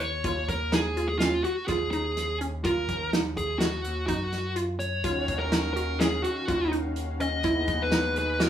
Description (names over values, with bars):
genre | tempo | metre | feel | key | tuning
progressive instrumental, band music in an uneven meter | 125 BPM | 5/4 | straight | Eb minor | A4 = 441 Hz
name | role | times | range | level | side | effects
fuzz lead guitar | melody | 0.0-8.5 s | F4 to Eb5 | -28 LUFS | equal | distortion
resonant blip pluck | arpeggios | 0.0-8.5 s | Db4 to Gb4 | -31 LUFS | right 1 dB | chorus
overdriven picked electric bass | bass | 0.0-8.5 s | D#2 to Gb2 | -33 LUFS | equal | none
natural country drum kit | drums | 0.2-8.5 s | hi-hat, kick drum, snare drum | -30 LUFS | right 1 dB | none
brassy analog pad | accompaniment | 5.0-8.5 s | Eb3 to F5 | -33 LUFS | left 2 dB | chorus
room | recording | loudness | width
moderate studio reverb, RT60 0.6 s | band playing live in one room, small room ambience | -25 LUFS | side -10 dB against mid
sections
0.0-8.5 A section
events
none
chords
0.3 Db/Eb; 2.6 Ebmadd9; 5.0 Ebm9; 7.4 Emaj9/D#